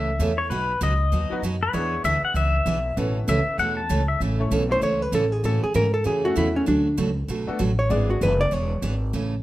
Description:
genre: country, western swing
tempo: 195 BPM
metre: 4/4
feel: swing 62% on 8ths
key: A major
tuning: A4 = 440 Hz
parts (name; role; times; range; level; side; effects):
- pedal steel guitar; second line; 0.0-4.2 s; B4 to A5; -25 LUFS; left 3 dB; none
- picked steel-string acoustic guitar; accompaniment; 0.0-9.3 s; B2 to A4; -27 LUFS; right 3 dB; none
- upright bass; bass; 0.0-9.4 s; E1 to A2; -25 LUFS; equal; none
- clear upright piano; accompaniment; 1.3-8.8 s; F#3 to C#5; -31 LUFS; left 2 dB; none
- hollow-body jazz guitar; melody; 4.7-9.0 s; C#4 to D5; -23 LUFS; equal; plate reverb
room: light reverb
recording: none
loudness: -20 LUFS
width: side -15 dB against mid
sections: 0.0-4.2 A section; 4.2-9.4 A section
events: pedal steel guitar solo 0.0-4.2; hollow-body jazz guitar solo 4.2-9.4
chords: 0.0 A; 0.5 B; 1.7 E7; 3.0 Aadd9; 5.4 F#m7; 6.7 Bm7; 7.9 E7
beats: 0.20 | 0.51 0.82 1.12 1.43 | 1.74 2.05 2.36 2.66 | 2.97 3.28 3.59 3.90 | 4.20 4.51 4.82 5.13 | 5.44 5.75 6.05 6.36 | 6.67 6.98 7.29 7.59 | 7.90 8.21 8.52 8.83 | 9.14

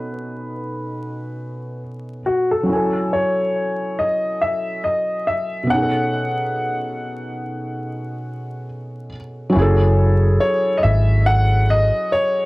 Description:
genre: hip hop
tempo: 70 BPM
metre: 4/4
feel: swing 57% on 16ths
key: F# dorian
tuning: A4 = 441 Hz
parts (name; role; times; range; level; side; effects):
- clear upright piano; melody; 0.0-12.5 s; F#4 to F#5; -21 LUFS; left 1 dB; low-pass filter, tape echo
- felt-muted upright piano; accompaniment; 0.0-12.5 s; B2 to G#5; -23 LUFS; equal; low-pass filter
- vintage muted fingered electric bass; bass; 9.6-11.9 s; F#1 to G#1; -15 LUFS; equal; transformer saturation
room: moderate studio reverb, RT60 0.6 s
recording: worn, warbling old tape, cassette tape, vinyl crackle, warbly pitch drift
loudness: -17 LUFS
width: side -21 dB against mid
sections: 0.0-9.5 A section; 9.5-12.5 B section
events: filter sweep 0.0-9.5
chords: 0.0 B9; 2.7 F#m9; 5.7 B9; 9.5 F#m9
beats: 0.12 0.98 1.83 | 2.69 3.55 4.41 5.26 | 6.12 6.98 7.83 8.69 | 9.55 10.41 11.26 12.12

